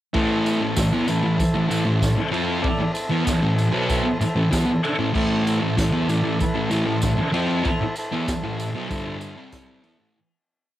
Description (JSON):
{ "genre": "garage rock duo or trio", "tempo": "96 BPM", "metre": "4/4", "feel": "straight", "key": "A minor", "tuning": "A4 = 439 Hz", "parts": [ { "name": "combo organ", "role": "sustained chords", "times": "0.1-10.1 s", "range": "E4 to D5", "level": "-29 LUFS", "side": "equal", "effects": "none" }, { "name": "thick fuzz guitar", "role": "riff", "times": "0.1-10.1 s", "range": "G2 to F4", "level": "-21 LUFS", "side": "equal", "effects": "distortion" }, { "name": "vintage drum kit", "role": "drums", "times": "0.1-10.0 s", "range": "crash cymbal, kick drum, ride cymbal, snare drum", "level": "-28 LUFS", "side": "equal", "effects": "cassette tape" }, { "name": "tambourine", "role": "percussion", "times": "0.5-9.9 s", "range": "none", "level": "-36 LUFS", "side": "right 4 dB", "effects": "none" } ], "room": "light reverb", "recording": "home recording on cassette", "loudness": "-19 LUFS", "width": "side -13 dB against mid", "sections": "0.1-10.2 riff", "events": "fade-out 7.7-10.2", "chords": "0.1 Am", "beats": "| 0.15 0.77 1.40 2.02 | 2.64 3.27 3.90 4.52 | 5.15 5.78 6.40 7.03 | 7.65 8.28 8.91 9.53" }